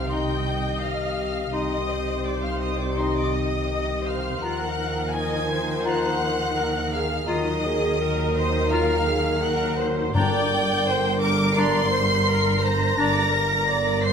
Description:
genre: cinematic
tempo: 84 BPM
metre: 4/4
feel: rubato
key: C minor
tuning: A4 = 439 Hz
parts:
  - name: rich symphonic violin section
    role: melody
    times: 0.0-14.1 s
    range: C6 to D7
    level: -29 LUFS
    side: left 1 dB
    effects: none
  - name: rich chamber violin section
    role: second line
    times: 0.0-14.1 s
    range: C5 to D6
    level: -30 LUFS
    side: left 2 dB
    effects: none
  - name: rich symphonic viola section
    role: accompaniment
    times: 0.0-14.1 s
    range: Gb3 to Eb5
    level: -29 LUFS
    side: right 1 dB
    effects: none
  - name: mellow French horn section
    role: sustained chords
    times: 0.0-14.1 s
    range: D3 to Bb4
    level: -27 LUFS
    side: left 3 dB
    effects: none
  - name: rich symphonic cello section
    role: bass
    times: 0.0-14.1 s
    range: G2 to Eb3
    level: -30 LUFS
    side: right 2 dB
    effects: none
  - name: rich symphonic double bass section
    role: bass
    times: 0.0-14.1 s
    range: G1 to Eb2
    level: -29 LUFS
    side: right 3 dB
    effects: none
  - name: mellow hollow silver concert flute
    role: second line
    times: 0.1-13.3 s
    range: Bb5 to C6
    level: -33 LUFS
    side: left 1 dB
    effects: none
  - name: warm clarinet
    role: second line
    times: 0.1-13.2 s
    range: D4 to F4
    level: -31 LUFS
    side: left 4 dB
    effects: none
  - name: timpani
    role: percussion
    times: 10.1-11.2 s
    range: G2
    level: -27 LUFS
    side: left 3 dB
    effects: none
room: moderate scoring stage reverb, RT60 1.6 s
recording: none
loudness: -21 LUFS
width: side -7 dB against mid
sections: 0.0-14.1 A section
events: none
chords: 0.0 Cm; 4.4 Ebmadd9; 10.1 Gm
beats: 0.09 0.81 | 1.52 2.25 2.98 3.70 | 4.42 5.14 5.86 6.58 | 7.29 8.00 8.72 9.43 | 10.14 10.86 11.56 12.27 | 12.98 13.70

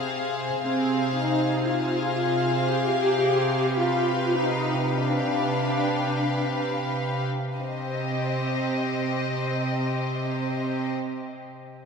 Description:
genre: classical, slow romantic movement for string orchestra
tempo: 42-60 BPM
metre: 3/4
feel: rubato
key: C minor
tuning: A4 = 440 Hz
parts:
  - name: dark studio violin section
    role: melody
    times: 0.0-10.9 s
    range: Eb5 to F5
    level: -30 LUFS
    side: left 4 dB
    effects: none
  - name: warm studio violin section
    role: second line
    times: 0.0-10.9 s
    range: G4 to C5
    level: -30 LUFS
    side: left 3 dB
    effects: none
  - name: dark symphonic viola section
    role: accompaniment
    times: 0.0-10.9 s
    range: C4 to G4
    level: -27 LUFS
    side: equal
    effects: none
  - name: rich symphonic cello section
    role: bass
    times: 0.0-10.9 s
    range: C3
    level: -29 LUFS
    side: right 3 dB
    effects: none
room: wet church reverb, RT60 3.8 s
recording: none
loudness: -23 LUFS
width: side -5 dB against mid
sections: 0.0-7.6 A section; 7.6-11.5 B section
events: slowing down 0.0-7.6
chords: 0.0 Fm/C; 3.8 G7/C; 7.6 Cm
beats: | 0.64 1.65 2.69 | 3.77 4.93 6.18 | 7.56 8.88 10.20

